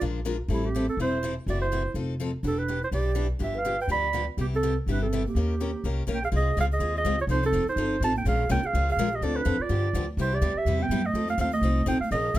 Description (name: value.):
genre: acoustic string swing (jazz manouche).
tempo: 248 BPM.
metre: 4/4.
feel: swing 55% on 8ths.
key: unclear.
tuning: A4 = 440 Hz.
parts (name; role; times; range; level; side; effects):
mellow clarinet; melody; 0.0-12.4 s; E4 to B5; -28 LUFS; right 2 dB; none.
breathy bright bass ocarina; second line; 0.0-12.4 s; A3 to D5; -32 LUFS; right 5 dB; none.
picked steel-string acoustic guitar; accompaniment; 0.0-12.4 s; C3 to Bb4; -32 LUFS; left 4 dB; none.
upright bass; bass; 0.0-12.4 s; E1 to G2; -28 LUFS; equal; none.
room: light reverb.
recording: none.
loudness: -24 LUFS.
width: side -14 dB against mid.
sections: 0.0-6.3 A section; 6.3-12.4 B section.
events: none.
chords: 0.0 Bb7; 0.5 Am7; 1.5 F#m7b5; 2.0 F7; 2.4 Em7; 3.4 G7; 4.4 Cmaj7; 5.3 Eb7; 6.3 Ab6; 7.3 F7; 8.3 Bbm7; 9.2 Dm7; 9.7 G7; 10.2 Cmaj7; 11.1 F7.